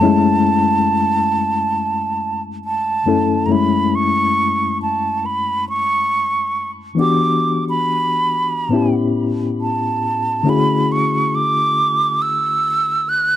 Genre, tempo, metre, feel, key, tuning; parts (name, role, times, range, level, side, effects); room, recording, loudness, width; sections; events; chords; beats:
R&B; 69 BPM; 4/4; swing 60% on 16ths; F# minor; A4 = 440 Hz
breathy mellow silver concert flute; melody; 0.0-13.4 s; A5 to F#6; -17 LUFS; right 3 dB
reed electric piano; accompaniment; 0.0-13.4 s; F#2 to A4; -18 LUFS; left 4 dB; overdrive, fast tremolo
light reverb; dry, close 1970s-style studio recording; -15 LUFS; side -11 dB against mid
0.0-3.5 A section; 3.5-13.4 B section
0.0 F#m7; 7.0 Em7; 8.7 A7; 10.5 Dmaj9#11
| 0.02 0.89 1.76 2.63 | 3.50 4.37 5.24 6.10 | 6.97 7.84 8.71 9.58 | 10.45 11.32 12.19 13.06